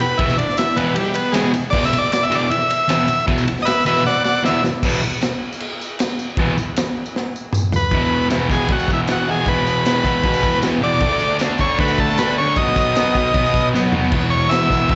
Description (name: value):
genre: garage rock duo or trio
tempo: 155 BPM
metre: 4/4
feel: straight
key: unclear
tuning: A4 = 440 Hz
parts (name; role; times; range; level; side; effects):
- overdriven combo organ; melody; 0.0-4.6, 7.8-15.0 s; G3 to F#5; -21 LUFS; equal; none
- crunchy breakbeat drum kit; drums; 0.0-15.0 s; crash cymbal, kick drum, ride cymbal, snare drum, toms; -24 LUFS; equal; none
- tambourine; percussion; 0.0-14.8 s; none; -39 LUFS; equal; none
- fuzz guitar; riff; 0.2-15.0 s; E2 to D4; -22 LUFS; equal; distortion, slapback echo
room: light reverb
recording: live gig heard through the venue's PA, recital hall reverb, nothing above 7.9 kHz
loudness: -18 LUFS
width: mono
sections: 0.0-4.8 A section; 4.8-7.9 B section; 7.9-15.0 C section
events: transistor combo organ solo 0.0-4.8; drum fill 4.1-4.8, 7.1-7.9, 13.7-14.1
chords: 0.0 E5; 11.0 D5; 12.6 B; 14.1 E5